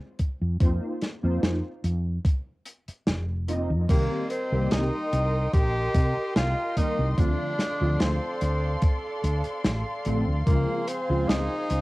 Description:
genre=vaporwave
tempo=73 BPM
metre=4/4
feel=straight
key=C dorian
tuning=A4 = 437 Hz
part: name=electronic kick drum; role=drums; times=0.2-10.6 s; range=none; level=-22 LUFS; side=equal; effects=none
part: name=natural country drum kit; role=drums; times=0.2-11.8 s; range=crash cymbal, hi-hat, snare drum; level=-28 LUFS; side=equal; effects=none
part: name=woody fretless electric bass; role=bass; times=0.4-11.8 s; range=F1 to C3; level=-26 LUFS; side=equal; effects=none
part: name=warbly lo-fi synth keys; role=accompaniment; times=0.6-11.4 s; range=Db3 to Eb5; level=-30 LUFS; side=equal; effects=ensemble chorus, cassette tape, analog delay
part: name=clear tenor saxophone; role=melody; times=3.9-11.8 s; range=Bb3 to G4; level=-30 LUFS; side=equal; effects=cassette tape, tape echo
part: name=dark studio string section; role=sustained chords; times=3.9-11.8 s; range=Ab4 to C6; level=-33 LUFS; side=equal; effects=cassette tape
room=light reverb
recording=home recording on cassette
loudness=-23 LUFS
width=side -20 dB against mid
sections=0.0-3.9 A section; 3.9-11.8 B section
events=none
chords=0.2 F7sus4; 3.9 Cm7; 7.2 Dm7; 10.5 Dbmaj7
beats=| 0.60 1.43 2.25 3.07 | 3.89 4.71 5.54 6.36 | 7.18 8.00 8.82 9.65 | 10.47 11.29

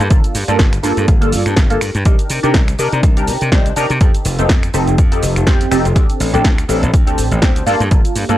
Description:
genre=filtered disco house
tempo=123 BPM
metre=4/4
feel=swing 56% on 16ths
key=G minor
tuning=A4 = 440 Hz
part: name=glassy slap bass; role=bass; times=0.0-8.4 s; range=F1 to C3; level=-18 LUFS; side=equal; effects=sidechain pumping
part: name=punchy analog drum machine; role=drums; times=0.0-8.4 s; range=finger snaps, hi-hat, shaker, snare drum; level=-21 LUFS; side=equal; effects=sidechain pumping on hats, sidechain pumping on perc
part: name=funky polysynth comp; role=accompaniment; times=0.1-8.4 s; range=Bb3 to C5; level=-18 LUFS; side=equal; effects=chorus, phaser, vintage 12-bit sampler grit, sidechain pumping
part: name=electronic kick drum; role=drums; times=0.1-8.0 s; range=none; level=-12 LUFS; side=equal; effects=none
room=digital ambience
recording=dry, gritty hardware recording, cassette tape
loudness=-11 LUFS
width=side -14 dB against mid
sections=0.0-8.4 A section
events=none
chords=0.0 Gm7; 2.1 Cm9; 4.0 F9; 6.0 D7sus4; 7.7 Gm7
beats=| 0.11 0.59 1.08 1.57 | 2.06 2.54 3.03 3.52 | 4.01 4.50 4.98 5.47 | 5.96 6.45 6.93 7.42 | 7.91

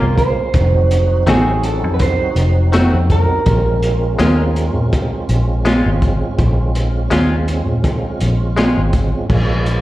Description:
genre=straight-eighth soul blues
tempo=82 BPM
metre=4/4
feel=swing 56% on 16ths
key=Bb minor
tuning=A4 = 440 Hz
part: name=electric guitar through a small old amp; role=melody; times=0.0-8.5 s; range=Ab4 to C5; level=-20 LUFS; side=right 3 dB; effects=slapback echo
part: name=tonewheel organ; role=accompaniment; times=0.0-9.8 s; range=Gb3 to Gb4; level=-23 LUFS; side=right 3 dB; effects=slow rotary speaker, overdrive, chorus vibrato, plate reverb, slapback echo
part: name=direct-recorded clean electric guitar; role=stabs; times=0.0-8.8 s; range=Eb3 to Gb4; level=-22 LUFS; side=left 3 dB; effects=plate reverb, slapback echo
part: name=vintage muted fingered electric bass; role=bass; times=0.0-9.8 s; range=F1 to Bb2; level=-16 LUFS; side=equal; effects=none
part: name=crunchy breakbeat drum kit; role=drums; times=0.2-9.8 s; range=crash cymbal, hi-hat, kick drum, snare drum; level=-18 LUFS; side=equal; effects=none
room=light reverb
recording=live gig heard through the venue's PA, recital hall reverb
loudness=-13 LUFS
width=side -16 dB against mid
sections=0.0-9.3 A section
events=none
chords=0.0 Gbmaj7 (rootless); 0.5 F7b9; 3.5 Bbm7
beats=| 0.54 1.27 2.00 2.73 | 3.46 4.19 4.92 5.65 | 6.38 7.11 7.84 8.57 | 9.30

